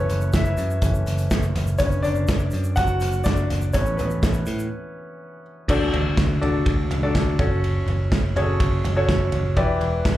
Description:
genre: piano-driven pop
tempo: 123 BPM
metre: 4/4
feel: straight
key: D major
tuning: A4 = 439 Hz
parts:
  - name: warm concert grand piano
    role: accompaniment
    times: 0.0-10.2 s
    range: D3 to F#5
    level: -25 LUFS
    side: left 1 dB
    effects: plate reverb, slapback echo
  - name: modern bright picked electric bass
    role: bass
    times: 0.0-10.2 s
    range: E1 to A2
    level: -23 LUFS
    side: equal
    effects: none
  - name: loose indie drum kit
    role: drums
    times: 0.1-10.2 s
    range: crash cymbal, hi-hat, kick drum, ride cymbal, snare drum, toms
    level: -23 LUFS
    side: equal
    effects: none
  - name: egg shaker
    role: percussion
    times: 0.1-4.7 s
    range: none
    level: -44 LUFS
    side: right 2 dB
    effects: none
  - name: impact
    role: sound effects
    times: 5.7-7.6 s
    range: none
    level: -34 LUFS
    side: equal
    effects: none
room: light reverb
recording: live gig heard through the venue's PA, club reverb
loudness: -19 LUFS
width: side -14 dB against mid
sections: 0.0-5.7 A section; 5.7-10.2 B section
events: grand piano solo 0.0-5.7; break 4.7-5.7; impact 5.7-7.6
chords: 0.0 F#m7; 1.8 Bmadd9/F#; 3.7 Asus2; 5.7 D; 7.4 F#m; 9.6 Em7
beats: 0.34 0.82 1.31 | 1.80 2.29 2.77 3.26 | 3.74 4.23 4.72 5.20 | 5.69 6.17 6.66 7.15 | 7.63 8.12 8.60 9.09 | 9.57 10.06

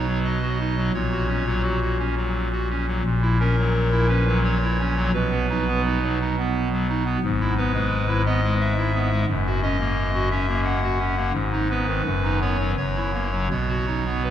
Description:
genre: classical, chorale-style piece for pipe organ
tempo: 86 BPM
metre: 3/4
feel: rubato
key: B major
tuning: A4 = 441 Hz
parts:
  - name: pipe organ, clarinet reed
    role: solo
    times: 0.0-14.3 s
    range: F#1 to F#5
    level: -20 LUFS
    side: equal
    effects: none
room: wet cathedral reverb, RT60 5.0 s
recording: dark, warm production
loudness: -20 LUFS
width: side -10 dB against mid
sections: 0.0-14.3 A section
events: none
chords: 0.0 B; 0.9 F#/A#; 3.1 F#7/A#; 5.1 B; 7.2 E/G#; 9.3 F#; 11.3 G#m; 12.1 B/F#; 12.8 F#7; 13.5 B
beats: 0.24 | 0.94 1.64 2.34 | 3.05 3.75 4.45 | 5.14 5.84 6.53 | 7.21 7.89 8.58 | 9.27 9.95 10.65 | 11.35 12.05 12.77 | 13.51 14.25

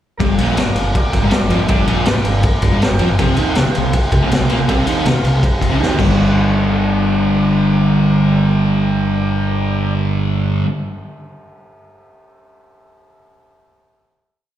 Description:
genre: garage rock duo or trio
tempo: 161 BPM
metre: 4/4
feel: straight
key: G minor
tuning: A4 = 444 Hz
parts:
  - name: overdriven combo organ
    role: sustained chords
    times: 0.2-9.9 s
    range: G4 to Bb5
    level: -26 LUFS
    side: equal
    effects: phaser
  - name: fuzz guitar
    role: riff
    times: 0.2-10.7 s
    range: G2 to Bb4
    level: -16 LUFS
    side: equal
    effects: distortion, slapback echo
  - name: growling fingered electric bass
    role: bass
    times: 0.2-10.6 s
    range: G1 to Bb2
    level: -19 LUFS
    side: equal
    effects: overdrive
  - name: raw garage drum kit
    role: drums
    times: 0.2-6.1 s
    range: crash cymbal, kick drum, ride cymbal, snare drum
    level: -18 LUFS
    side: equal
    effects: none
room: small room ambience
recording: live gig heard through the venue's PA, recital hall reverb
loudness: -13 LUFS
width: side -11 dB against mid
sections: 0.2-6.2 riff; 6.2-9.2 final hit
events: drum fill 5.8-6.2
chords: 0.2 Gm; 3.2 C5; 6.0 Gm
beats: | 0.19 0.57 0.94 1.32 | 1.69 2.06 2.44 2.81 | 3.18 3.56 3.93 4.30 | 4.67 5.05 5.42 5.79 | 6.17 6.54 6.92 7.29 | 7.67 8.04 8.42 8.79

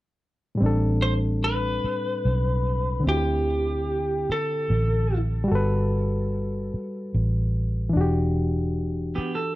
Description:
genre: R&B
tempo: 49 BPM (dotted quarters)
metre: 6/8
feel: straight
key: A dorian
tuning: A4 = 444 Hz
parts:
  - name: barky reed electric piano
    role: accompaniment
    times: 0.5-9.6 s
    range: A2 to B4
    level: -27 LUFS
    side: left 1 dB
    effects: overdrive
  - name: vintage muted fingered electric bass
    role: bass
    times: 0.6-9.2 s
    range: E1 to D2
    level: -24 LUFS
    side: equal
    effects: none
  - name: lightly driven lead guitar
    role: melody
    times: 1.0-5.2 s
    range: G4 to C5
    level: -27 LUFS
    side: equal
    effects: tape echo
  - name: semi-hollow electric guitar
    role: second line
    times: 9.2-9.5 s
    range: B3 to A4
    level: -27 LUFS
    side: right 4 dB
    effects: phaser
room: light reverb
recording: dark, warm production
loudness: -22 LUFS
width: side -17 dB against mid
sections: 0.6-9.6 A section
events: none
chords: 0.6 Am11; 3.0 D9sus4; 5.5 Gmaj9; 7.9 Em9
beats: | 0.60 1.82 | 3.05 4.27 | 5.50 6.72 | 7.94 9.17

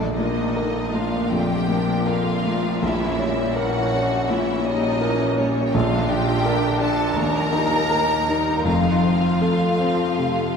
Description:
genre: classical, romantic movement for piano and orchestra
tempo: 78-85 BPM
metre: 4/4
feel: rubato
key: Bb major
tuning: A4 = 441 Hz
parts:
  - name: clear grand piano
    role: melody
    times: 0.0-10.6 s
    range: Bb1 to Bb4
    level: -21 LUFS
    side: left 2 dB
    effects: none
  - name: clear symphonic violin section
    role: melody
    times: 0.0-10.6 s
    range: Db5 to Bb5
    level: -28 LUFS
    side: left 1 dB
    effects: none
  - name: warm studio violin section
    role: second line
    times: 0.0-10.6 s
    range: Db4 to Bb4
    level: -27 LUFS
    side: left 2 dB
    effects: none
  - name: rich symphonic viola section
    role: accompaniment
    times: 0.0-10.5 s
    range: D3 to F4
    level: -28 LUFS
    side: right 3 dB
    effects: none
  - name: clear symphonic cello section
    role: bass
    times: 0.0-10.6 s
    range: Eb2 to Bb2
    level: -29 LUFS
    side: right 3 dB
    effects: none
  - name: rich symphonic double bass section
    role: bass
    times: 0.0-0.5, 5.7-9.4 s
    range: F1 to Eb2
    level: -32 LUFS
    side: right 6 dB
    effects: none
room: wet church reverb, RT60 3.5 s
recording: minimal, uncompressed stereo recording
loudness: -18 LUFS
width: side -6 dB against mid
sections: 0.0-10.6 A section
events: none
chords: 0.0 Bb; 2.8 Bbdim7; 5.7 Bb; 7.2 Eb; 8.7 F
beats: 0.55 1.30 2.07 | 2.82 3.56 4.29 5.01 | 5.74 6.45 7.16 7.90 | 8.66 9.43 10.19

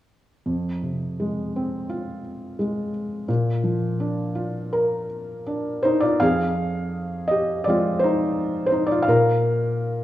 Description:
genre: classical, lyrical solo piano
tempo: 83 BPM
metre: 4/4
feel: uneven beats, rubato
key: F dorian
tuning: A4 = 440 Hz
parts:
  - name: felt-muted upright piano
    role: solo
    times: 0.5-10.0 s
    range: F2 to F5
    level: -21 LUFS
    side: equal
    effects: none
room: light reverb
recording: worn, warbling old tape, cassette tape, warbly pitch drift, studio reverb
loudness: -21 LUFS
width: side -14 dB against mid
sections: 0.5-6.2 A section; 6.2-10.0 B section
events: none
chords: 0.5 Fm; 3.3 Bb; 6.2 Fm; 9.1 Bb5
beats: | 0.46 1.20 1.91 2.59 | 3.29 3.99 4.71 5.47 | 6.21 6.95 7.68 8.38 | 9.08 9.79

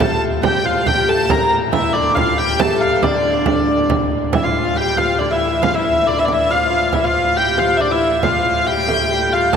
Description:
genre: medieval dance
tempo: 138 BPM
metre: 3/4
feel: straight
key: D minor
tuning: A4 = 440 Hz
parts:
  - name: rich hurdy-gurdy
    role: melody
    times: 0.0-9.6 s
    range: D5 to Bb5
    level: -17 LUFS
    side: equal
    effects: none
  - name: dark fiddle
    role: second line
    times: 0.0-9.6 s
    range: D4 to Bb4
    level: -23 LUFS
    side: left 5 dB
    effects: none
  - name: lute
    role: second line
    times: 0.0-9.6 s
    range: D3 to Bb3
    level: -22 LUFS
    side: right 1 dB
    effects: none
  - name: pipe organ, stopped flute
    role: drone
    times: 0.0-9.6 s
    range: D2 to A2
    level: -26 LUFS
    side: left 1 dB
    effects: none
  - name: frame drum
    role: percussion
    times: 0.0-9.6 s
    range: none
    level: -22 LUFS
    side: right 4 dB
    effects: none
room: wet cathedral reverb, RT60 5.3 s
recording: none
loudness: -14 LUFS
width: side -7 dB against mid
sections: 0.0-4.3 A section; 4.3-9.6 B section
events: none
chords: none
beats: 0.00 | 0.43 0.86 1.30 | 1.73 2.17 2.60 | 3.03 3.47 3.90 | 4.33 4.77 5.20 | 5.63 6.07 6.50 | 6.93 7.37 7.80 | 8.23 8.66 9.10 | 9.53

